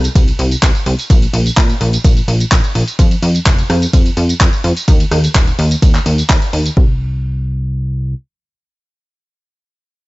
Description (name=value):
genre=progressive house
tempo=127 BPM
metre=4/4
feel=straight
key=C minor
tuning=A4 = 440 Hz
part: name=plucky analog bass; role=bass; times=0.0-8.1 s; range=Eb1 to Bb2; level=-15 LUFS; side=equal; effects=sidechain pumping
part: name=deep house drum kit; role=drums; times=0.0-6.8 s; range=handclaps, hi-hat, ride cymbal, rim click, tambourine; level=-18 LUFS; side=equal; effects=none
part: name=electronic kick drum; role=drums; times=0.2-6.9 s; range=none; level=-11 LUFS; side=equal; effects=none
room=little or no reverb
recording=nothing above 7.8 kHz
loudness=-11 LUFS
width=side -21 dB against mid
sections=0.0-6.8 A section; 6.8-10.1 B section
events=drop 0.0-6.8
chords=none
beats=0.15 0.63 | 1.10 1.57 2.04 2.52 | 2.99 3.46 3.94 4.41 | 4.88 5.35 5.83 6.30 | 6.77 7.24 7.71